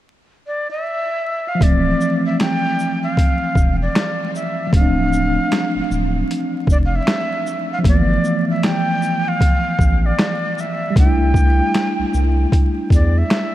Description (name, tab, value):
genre	lo-fi hip hop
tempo	77 BPM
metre	4/4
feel	swing 61% on 16ths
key	D dorian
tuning	A4 = 444 Hz
part	breathy jazz flute	melody	0.5-13.5 s	D5 to G5	-22 LUFS	equal	low-pass filter
part	mellow tine electric piano	accompaniment	1.6-13.5 s	E3 to E4	-20 LUFS	equal	medium stereo tremolo, cassette tape, low-pass filter
part	saturated sub bass	bass	1.6-13.2 s	D1 to E2	-18 LUFS	equal	none
part	boom bap sampler-style drum kit	drums	1.6-13.5 s	finger snaps, hi-hat, kick drum, shaker, snare drum	-18 LUFS	equal	none
room	moderate huge ambient reverb, RT60 4.2 s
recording	dreamy mix soaked in reverb, vinyl crackle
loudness	-15 LUFS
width	side -14 dB against mid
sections	0.0-1.6 A section; 1.6-13.5 B section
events	none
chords	0.0 N.C.; 1.6 Dm9; 7.8 G13; 11.0 C69